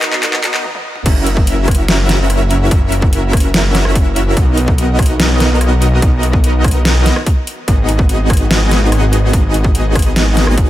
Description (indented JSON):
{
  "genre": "future bass",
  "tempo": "145 BPM",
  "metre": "4/4",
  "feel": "half-time",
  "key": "B major",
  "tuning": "A4 = 441 Hz",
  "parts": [
    { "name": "dense compressed supersaw", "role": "riff", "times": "0.0-10.7 s", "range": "B3 to E5", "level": "-17 LUFS", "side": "equal", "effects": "sidechain pumping, dub echo" },
    { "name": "wide detuned saw bass", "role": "bass", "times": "0.0-10.7 s", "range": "F#1 to B1", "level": "-14 LUFS", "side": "equal", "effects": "chorus, tube saturation, sidechain pumping" },
    { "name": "dubstep drum kit", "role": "drums", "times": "0.0-10.7 s", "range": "crash cymbal, handclaps, hi-hat, rim click, snare drum, toms", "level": "-18 LUFS", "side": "equal", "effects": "overdrive" },
    { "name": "electronic kick drum", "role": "drums", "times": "1.1-10.7 s", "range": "none", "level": "-12 LUFS", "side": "equal", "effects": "none" }
  ],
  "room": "little or no reverb",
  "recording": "high-pass filter",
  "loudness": "-10 LUFS",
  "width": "side -14 dB against mid",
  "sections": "0.0-1.1 A section; 1.1-10.7 B section",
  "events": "build-up 0.0-1.1; drum fill 0.0-0.6, 0.6-1.1; stop 0.6-1.1; drop 1.1-10.7",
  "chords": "0.0 Bmaj7; 1.1 F#7; 4.4 Bmaj7; 7.7 G#m7",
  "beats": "0.23 0.64 | 1.06 1.47 1.89 2.30 | 2.71 3.13 3.54 3.96 | 4.37 4.78 5.20 5.61 | 6.02 6.44 6.85 7.26 | 7.68 8.09 8.51 8.92 | 9.33 9.75 10.16 10.58"
}